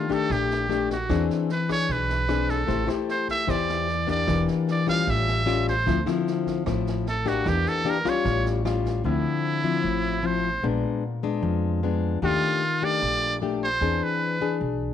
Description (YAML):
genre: bossa nova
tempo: 151 BPM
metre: 4/4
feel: straight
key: D minor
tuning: A4 = 445 Hz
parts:
  - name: trumpet with metal mute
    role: melody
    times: 0.0-14.6 s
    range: E4 to F5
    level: -26 LUFS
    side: right 2 dB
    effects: none
  - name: nylon-string guitar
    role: accompaniment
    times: 0.0-14.9 s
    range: A2 to C5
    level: -25 LUFS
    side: left 6 dB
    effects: none
  - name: swinging big-band drum kit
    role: drums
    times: 0.1-8.9 s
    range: kick drum, rim click, snare drum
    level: -35 LUFS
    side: right 6 dB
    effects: none
  - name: upright bass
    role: bass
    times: 0.3-14.9 s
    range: E1 to F2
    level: -29 LUFS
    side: right 2 dB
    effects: none
room: light reverb, studio reverb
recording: 1960s-style stereo with parts hard left and right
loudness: -22 LUFS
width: side -9 dB against mid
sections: 0.0-9.0 A section; 9.0-14.9 B section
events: muted trumpet solo 0.0-9.0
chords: 0.0 Ebmaj7#11; 1.1 E7b13; 2.7 Am7; 4.3 Em7b5; 5.1 A7b13; 5.9 Dm9; 7.5 Em7b5; 8.3 Aaug7; 9.0 Dm9; 10.6 Bb7b9; 12.2 Ebmaj9#11; 13.8 E7b13